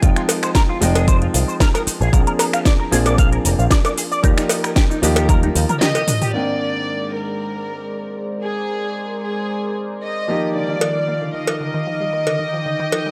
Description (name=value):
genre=nu-disco, nu disco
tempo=114 BPM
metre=4/4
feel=straight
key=unclear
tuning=A4 = 438 Hz
part: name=warm concert grand piano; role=accompaniment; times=0.0-13.1 s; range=Ab2 to G5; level=-26 LUFS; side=equal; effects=tape echo
part: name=electric guitar with an envelope filter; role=riff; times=0.0-6.3 s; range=D4 to F5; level=-26 LUFS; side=equal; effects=ensemble chorus, tape echo
part: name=picked electric bass with an envelope filter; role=bass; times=0.0-5.6 s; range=F1 to Eb2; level=-21 LUFS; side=equal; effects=none
part: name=electronic kick drum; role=drums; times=0.0-5.4 s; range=none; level=-18 LUFS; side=equal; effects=none
part: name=house drum kit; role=drums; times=0.0-6.3 s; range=finger snaps, hi-hat, shaker, snare drum, toms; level=-24 LUFS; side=equal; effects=overdrive, low-pass filter on snare, low-pass filter on hats, low-pass filter on perc, low-pass filter on toms, low-pass filter on room
part: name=cowbell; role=percussion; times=0.3-6.1, 10.8-13.0 s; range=none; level=-24 LUFS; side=equal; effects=none
part: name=warm chamber violin section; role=melody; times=5.8-13.1 s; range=Ab4 to Eb5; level=-26 LUFS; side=equal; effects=tape echo
part: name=lush unison pad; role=sustained chords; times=6.3-13.1 s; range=Eb3 to D6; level=-29 LUFS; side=equal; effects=chorus, sidechain pumping
part: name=unison pluck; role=arpeggios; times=10.6-13.1 s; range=D3 to Bb3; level=-32 LUFS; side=equal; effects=sidechain pumping, tape echo
room=little or no reverb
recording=dry, gritty hardware recording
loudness=-19 LUFS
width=mono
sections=0.0-6.3 A section; 6.3-13.1 B section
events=drum fill 5.3-6.3; kick drops out 5.8-6.3; filter sweep on analog synth pad 6.3-13.1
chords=0.0 Fm7; 2.1 Bb9; 4.2 Ebmaj7; 6.3 Abmaj9#11; 10.3 Ebmaj9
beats=| 0.03 0.55 1.08 1.60 | 2.13 2.66 3.18 3.71 | 4.24 4.76 5.29 5.82 | 6.34 6.87 7.39 7.92 | 8.45 8.97 9.50 10.03 | 10.55 11.08 11.61 12.13 | 12.66